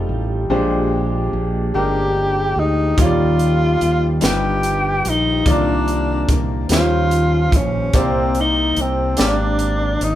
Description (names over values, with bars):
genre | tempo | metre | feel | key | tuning
slow gospel | 48 BPM (dotted quarters) | 6/8 | straight | Eb major | A4 = 440 Hz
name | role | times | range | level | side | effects
clear upright piano | accompaniment | 0.0-10.2 s | G2 to D5 | -22 LUFS | left 2 dB | none
mellow French horn section | sustained chords | 0.0-10.2 s | Eb3 to D5 | -30 LUFS | right 1 dB | none
fingered electric bass | bass | 0.0-10.2 s | G1 to Eb2 | -20 LUFS | right 1 dB | none
breathy tenor saxophone | melody | 1.7-10.2 s | C4 to G4 | -19 LUFS | equal | none
crisp fusion drum kit | drums | 3.0-10.2 s | hi-hat, kick drum, snare drum | -20 LUFS | equal | none
room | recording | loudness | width
light reverb | band playing live in one room | -15 LUFS | side -12 dB against mid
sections
0.0-10.2 A section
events
none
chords
0.5 Bb13; 3.0 Ebmaj9; 4.2 G7alt; 5.5 Cm11; 6.7 Eb13; 7.9 Abmaj9#11/C